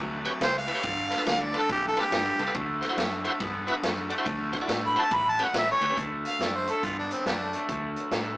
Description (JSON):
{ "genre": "electric blues shuffle", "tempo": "140 BPM", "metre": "4/4", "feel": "swing 64% on 8ths", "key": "D mixolydian", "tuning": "A4 = 440 Hz", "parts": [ { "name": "raw garage guitar", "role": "riff", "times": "0.0-8.4 s", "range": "G2 to B3", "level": "-32 LUFS", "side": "equal", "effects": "overdrive" }, { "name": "vintage muted fingered electric bass", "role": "bass", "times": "0.0-8.4 s", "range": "G1 to A2", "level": "-39 LUFS", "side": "equal", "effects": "none" }, { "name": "bright tonewheel organ", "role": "accompaniment", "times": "0.2-6.0 s", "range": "C#4 to E5", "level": "-30 LUFS", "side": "equal", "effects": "slow rotary speaker, overdrive" }, { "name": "vintage drum kit", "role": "drums", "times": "0.3-8.2 s", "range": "hi-hat, kick drum, ride cymbal, snare drum", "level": "-32 LUFS", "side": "equal", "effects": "none" }, { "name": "warm harmonica", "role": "melody", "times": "0.4-7.7 s", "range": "G3 to B5", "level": "-26 LUFS", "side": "equal", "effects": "none" } ], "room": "moderate booth ambience, RT60 0.3 s", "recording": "rough rehearsal-room recording, tube saturation, small speaker sound", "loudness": "-25 LUFS", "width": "side -20 dB against mid", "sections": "0.0-6.0 A section; 6.0-8.4 B section", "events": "harmonica solo 0.0-6.0", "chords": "0.0 A7; 0.8 G7; 2.5 D7; 5.1 A7; 6.0 D" }